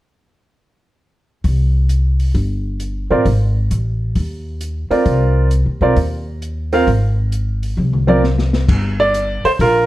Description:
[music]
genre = jazz piano trio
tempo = 132 BPM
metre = 4/4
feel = swing 67% on 8ths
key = unclear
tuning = A4 = 440 Hz
[part]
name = upright bass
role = bass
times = 1.4-9.9 s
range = G1 to Eb2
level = -16 LUFS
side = equal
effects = none
[part]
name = open jazz drum kit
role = drums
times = 1.4-9.7 s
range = crash cymbal, hi-hat, kick drum, snare drum, toms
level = -21 LUFS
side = left 1 dB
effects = none
[part]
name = clear upright piano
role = melody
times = 3.1-9.9 s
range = C4 to F5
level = -15 LUFS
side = right 2 dB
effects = none
[sound]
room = light reverb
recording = dark, warm production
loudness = -14 LUFS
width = side -16 dB against mid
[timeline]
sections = 1.4-8.7 A section; 8.7-9.9 B section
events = drum fill 7.8-8.7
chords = 1.4 C5; 3.2 Ab5; 5.1 Cm7; 6.9 Ab; 8.7 Gm7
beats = | 1.44 1.89 2.34 2.79 | 3.25 3.70 4.15 4.61 | 5.06 5.51 5.97 6.42 | 6.87 7.33 7.78 8.23 | 8.68 9.14 9.59

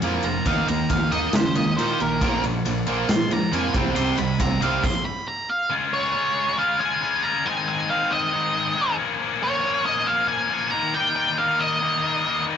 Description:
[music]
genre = quiet-loud alternative rock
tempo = 137 BPM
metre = 4/4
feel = straight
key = unclear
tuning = A4 = 440 Hz
[part]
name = twangy electric guitar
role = arpeggios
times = 0.0-4.8 s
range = Bb2 to G4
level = -35 LUFS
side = right 4 dB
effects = none
[part]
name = crunchy overdriven guitar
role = riff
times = 0.0-4.8 s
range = Bb2 to Eb4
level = -25 LUFS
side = right 6 dB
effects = none
[part]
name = scooped high-gain guitar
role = riff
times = 0.0-12.6 s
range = Ab2 to F4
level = -25 LUFS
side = left 6 dB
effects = distortion
[part]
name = growling picked electric bass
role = bass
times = 0.0-4.8 s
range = F1 to Db3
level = -29 LUFS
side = equal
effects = overdrive
[part]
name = big rock drum kit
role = drums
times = 0.0-4.9 s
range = crash cymbal, kick drum, ride cymbal, snare drum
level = -26 LUFS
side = equal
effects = none
[part]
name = octave-fuzz lead guitar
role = melody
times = 0.2-12.4 s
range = Bb4 to C6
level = -24 LUFS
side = right 1 dB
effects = distortion
[sound]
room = moderate stone room reverb, RT60 1.2 s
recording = rough rehearsal-room recording, warm saturation, nothing above 7.7 kHz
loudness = -20 LUFS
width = side -8 dB against mid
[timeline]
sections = 0.0-5.7 A section; 5.7-12.6 B section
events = half time 0.0-5.7; lead electric guitar solo 0.0-5.7; stop 4.8-5.7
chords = 0.5 Eb; 2.2 Bb; 3.7 Cm; 5.7 Db; 7.5 Ab; 9.0 Bbm; 10.7 Eb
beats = 0.02 | 0.46 0.90 1.34 1.78 | 2.21 2.65 3.09 3.53 | 3.97 4.41 4.84 5.28 | 5.72 6.16 6.59 7.03 | 7.46 7.90 8.34 8.77 | 9.21 9.64 10.08 10.52 | 10.95 11.39 11.82 12.26

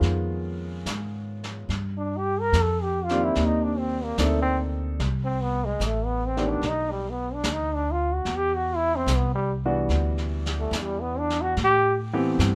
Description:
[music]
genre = jazz ballad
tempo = 73 BPM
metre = 4/4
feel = swing 68% on 8ths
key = unclear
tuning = A4 = 440 Hz
[part]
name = clear grand piano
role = accompaniment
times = 0.0-12.6 s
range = D#3 to A4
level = -31 LUFS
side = equal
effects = none
[part]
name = upright bass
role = bass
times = 0.0-12.6 s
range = A1 to A2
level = -30 LUFS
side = equal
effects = none
[part]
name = vintage brush drum kit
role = drums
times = 0.0-12.6 s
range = brushed snare drum, hi-hat, snare drum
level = -37 LUFS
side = equal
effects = none
[part]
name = bright trombone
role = melody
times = 2.0-12.0 s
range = G3 to Bb4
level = -28 LUFS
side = equal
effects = none
[sound]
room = light reverb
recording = none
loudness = -26 LUFS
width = mono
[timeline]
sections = 0.0-12.6 A section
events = trombone solo 0.0-12.6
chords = 0.0 C#9; 1.7 Cm9; 5.0 Am11; 6.6 Bm; 8.3 Em9; 11.6 Am7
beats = 0.02 0.85 | 1.70 2.53 3.36 4.18 | 5.00 5.82 6.63 7.45 | 8.27 9.09 9.91 10.74 | 11.57 12.40

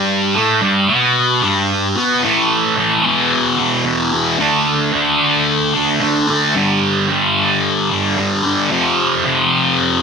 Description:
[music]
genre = rock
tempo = 111 BPM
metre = 4/4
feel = straight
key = unclear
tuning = A4 = 440 Hz
[part]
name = thick fuzz guitar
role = solo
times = 0.0-10.0 s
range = E2 to D4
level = -13 LUFS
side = equal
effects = distortion, phaser
[sound]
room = moderate spring reverb, RT60 2.1 s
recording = none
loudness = -13 LUFS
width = side -5 dB against mid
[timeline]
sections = 0.0-2.2 A section; 2.2-10.0 B section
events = none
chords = 0.0 Gadd9; 2.2 A5; 3.0 E5; 4.4 D5; 6.6 G5; 8.7 F5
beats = | 0.09 0.63 1.17 1.70 | 2.24 2.78 3.32 3.86 | 4.40 4.93 5.47 6.01 | 6.55 7.09 7.63 8.17 | 8.71 9.25 9.79

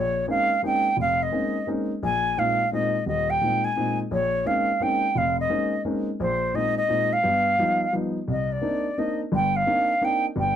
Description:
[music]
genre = jazz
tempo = 172 BPM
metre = 3/4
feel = swing 65% on 8ths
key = Bb dorian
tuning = A4 = 439 Hz
[part]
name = silver concert flute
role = melody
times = 0.0-10.6 s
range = C5 to Ab5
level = -23 LUFS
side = right 1 dB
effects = none
[part]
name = dark baby grand piano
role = accompaniment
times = 0.0-10.6 s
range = Eb1 to Eb4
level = -26 LUFS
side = left 1 dB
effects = none
[sound]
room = light reverb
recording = close, detailed microphones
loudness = -21 LUFS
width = side -9 dB against mid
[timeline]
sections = 0.0-8.3 A section; 8.3-10.6 B section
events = flute solo 8.3-10.6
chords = 0.0 Bbm11; 2.0 Ab/Bb; 4.1 Bbm11; 6.2 Ab/Bb; 7.2 G7b13; 8.3 Cm9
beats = 0.27 0.62 | 0.96 1.31 1.66 | 2.01 2.36 2.71 | 3.05 3.40 3.75 | 4.10 4.44 4.79 | 5.14 5.49 5.84 | 6.18 6.53 6.88 | 7.23 7.58 7.92 | 8.27 8.62 8.97 | 9.32 9.66 10.01 | 10.36

